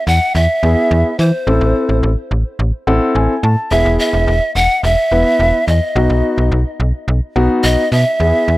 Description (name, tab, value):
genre	synth-pop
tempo	107 BPM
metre	4/4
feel	straight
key	E major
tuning	A4 = 440 Hz
part	breathy pan flute	melody	0.0-8.6 s	C5 to F#5	-16 LUFS	right 1 dB	analog delay
part	slap-like FM bass	bass	0.1-8.6 s	E1 to E3	-14 LUFS	equal	none
part	dark concert grand piano	accompaniment	0.6-8.6 s	B3 to A5	-17 LUFS	left 1 dB	none
room	small room reverb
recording	dry, gritty hardware recording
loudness	-12 LUFS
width	side -18 dB against mid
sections	0.0-8.2 A section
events	grand piano fill 2.6-3.7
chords	0.0 E; 1.5 Am; 3.7 E; 6.0 B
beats	0.35 0.91 | 1.47 2.03 2.59 3.15 | 3.71 4.27 4.83 5.39 | 5.96 6.52 7.08 7.64 | 8.20